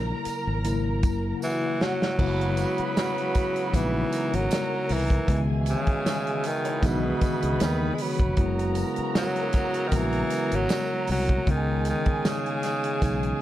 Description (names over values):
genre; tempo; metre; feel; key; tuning
lush 1970s-style soul; 78 BPM; 4/4; swing 54% on 16ths; unclear; A4 = 440 Hz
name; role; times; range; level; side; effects
warm studio violin section; second line; 0.0-13.4 s; F#4 to B5; -34 LUFS; right 2 dB; none
mellow tine electric piano; accompaniment; 0.0-13.4 s; C#3 to F#4; -30 LUFS; left 3 dB; medium stereo tremolo
fingered electric bass; bass; 0.0-13.3 s; E#1 to D#2; -28 LUFS; equal; none
warm soul drum kit; drums; 0.3-13.4 s; crash cymbal, hi-hat, kick drum, snare drum; -27 LUFS; equal; none
tambourine; percussion; 0.3-13.2 s; none; -46 LUFS; right 6 dB; none
raspy tenor saxophone; melody; 1.4-13.4 s; B2 to G#3; -28 LUFS; equal; none
mellow horn section; stabs; 2.2-13.4 s; B2 to E5; -35 LUFS; right 3 dB; none
electric guitar through a small old amp; riff; 6.6-8.2 s; B3 to C#5; -35 LUFS; right 4 dB; ensemble chorus
room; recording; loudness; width
light reverb, studio ambience; dark, warm production; -23 LUFS; side -13 dB against mid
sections
0.0-2.2 A section; 2.2-13.4 B section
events
drum fill 1.4-2.2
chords
0.0 F#7; 2.2 F#9sus4; 5.3 C#m9; 8.4 F#9sus4; 11.5 C#m9